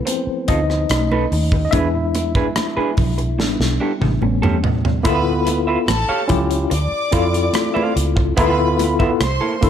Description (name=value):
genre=lush 1970s-style soul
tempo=72 BPM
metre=4/4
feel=straight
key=D dorian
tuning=A4 = 440 Hz
part: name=tine electric piano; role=accompaniment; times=0.0-9.7 s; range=F3 to E5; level=-20 LUFS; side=left 3 dB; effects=overdrive, fast stereo tremolo
part: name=electric guitar through a small old amp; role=riff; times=0.1-9.7 s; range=Bb3 to F5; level=-25 LUFS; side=right 5 dB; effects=none
part: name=modern studio drum kit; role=drums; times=0.1-9.7 s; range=hi-hat, kick drum, rim click, snare drum, toms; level=-22 LUFS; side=equal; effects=none
part: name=congas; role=percussion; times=0.1-9.4 s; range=none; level=-27 LUFS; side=right 4 dB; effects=none
part: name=vintage muted fingered electric bass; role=bass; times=0.3-9.7 s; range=A1 to A2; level=-21 LUFS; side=equal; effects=none
part: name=clear studio violin section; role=second line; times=5.0-9.6 s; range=A4 to D6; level=-24 LUFS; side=left 1 dB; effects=none
room=light reverb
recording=none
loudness=-16 LUFS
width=side -9 dB against mid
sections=0.0-5.1 A section; 5.1-9.7 B section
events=tine electric piano solo 0.0-5.1; drum fill 3.4-5.1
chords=0.0 Dm7; 0.9 B7; 1.7 E7; 3.4 A7sus4; 4.2 A7; 5.1 Dm69; 5.9 A7b13; 6.7 Dm7; 8.4 Dm69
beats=0.07 0.90 | 1.73 2.56 3.39 4.22 | 5.06 5.89 6.72 7.55 | 8.38 9.21